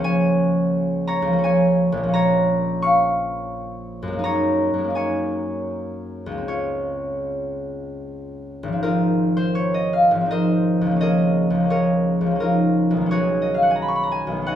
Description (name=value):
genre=classical, solo harp piece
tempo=75-89 BPM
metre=3/4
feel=rubato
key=unclear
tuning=A4 = 440 Hz
part: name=concert harp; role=solo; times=0.0-14.6 s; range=Ab1 to Db6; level=-18 LUFS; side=equal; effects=none
room=moderate recital hall reverb, RT60 1.3 s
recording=close, detailed microphones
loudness=-18 LUFS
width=side -10 dB against mid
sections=0.0-8.8 A section; 8.8-14.6 B section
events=none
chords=0.0 Db6; 2.1 Bbm7; 4.2 Gb69; 6.5 Dbmaj7; 8.8 Ab69; 11.0 Db69; 13.1 B69